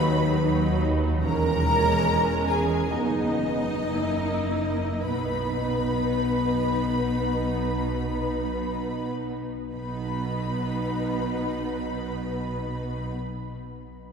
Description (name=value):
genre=classical, slow romantic movement for string orchestra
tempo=48-76 BPM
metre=4/4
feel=rubato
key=B major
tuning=A4 = 440 Hz
part: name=bright symphonic violin section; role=melody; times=0.0-13.1 s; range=D#5 to B5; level=-32 LUFS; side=left 2 dB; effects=none
part: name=warm symphonic violin section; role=second line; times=0.0-13.1 s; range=D#4 to B4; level=-30 LUFS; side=equal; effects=none
part: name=rich studio viola section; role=accompaniment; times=0.0-13.1 s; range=F#3 to E4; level=-29 LUFS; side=equal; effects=none
part: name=rich symphonic cello section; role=bass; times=0.0-13.1 s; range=D#2 to B2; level=-30 LUFS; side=right 1 dB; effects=none
part: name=rich symphonic double bass section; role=bass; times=0.0-13.1 s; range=E1 to D#2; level=-31 LUFS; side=right 1 dB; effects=none
room=wet cathedral reverb, RT60 4.3 s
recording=heard from further back in the room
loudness=-24 LUFS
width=side -6 dB against mid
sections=0.0-9.7 A section; 9.7-14.1 B section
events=slowing down 0.0-9.7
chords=0.0 B/D#; 1.2 C#m/E; 2.9 B/F#; 3.9 F#7; 5.0 B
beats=0.44 | 1.24 2.06 2.92 3.88 | 5.05 6.20 7.34 8.52 | 9.72 10.85 11.98